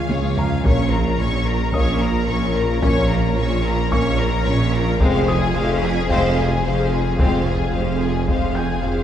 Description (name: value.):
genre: cinematic, hybrid orchestral and electronic film score.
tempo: 110 BPM.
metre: 4/4.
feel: straight.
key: F minor.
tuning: A4 = 439 Hz.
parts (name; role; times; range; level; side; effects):
warm symphonic violin section; melody; 0.0-9.0 s; F5 to Db6; -27 LUFS; left 4 dB; none.
rich symphonic violin section; second line; 0.0-9.0 s; Ab4 to F5; -26 LUFS; left 3 dB; none.
rich symphonic viola section; accompaniment; 0.0-9.0 s; Db4 to Ab4; -29 LUFS; left 1 dB; none.
ethereal airy pad; sustained chords; 0.0-9.0 s; F3 to Bb4; -26 LUFS; equal; ensemble chorus, built-in reverb.
clear symphonic cello section; bass; 0.0-9.0 s; Db2 to Bb2; -26 LUFS; right 2 dB; none.
mellow tuba; bass; 0.0-9.0 s; F1 to Db2; -26 LUFS; right 3 dB; none.
punchy sub bass; bass; 0.0-9.0 s; F1 to Db2; -26 LUFS; equal; none.
rich studio double bass section; bass; 0.0-9.0 s; F1 to Db2; -27 LUFS; right 2 dB; none.
dark concert grand piano; texture; 0.0-9.0 s; Eb5 to G6; -35 LUFS; left 2 dB; digital delay.
taiko ensemble; drums; 0.1-8.8 s; none; -23 LUFS; equal; none.
mellow French horn section; sustained chords; 0.6-8.5 s; Ab3 to Db4; -28 LUFS; left 3 dB; none.
room: wet scoring stage reverb, RT60 1.7 s.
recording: heard from further back in the room.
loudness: -17 LUFS.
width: side -10 dB against mid.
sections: 0.0-9.0 A section.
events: drum fill 0.0-0.6.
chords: 0.0 Db; 0.6 Bbm; 5.0 Fm.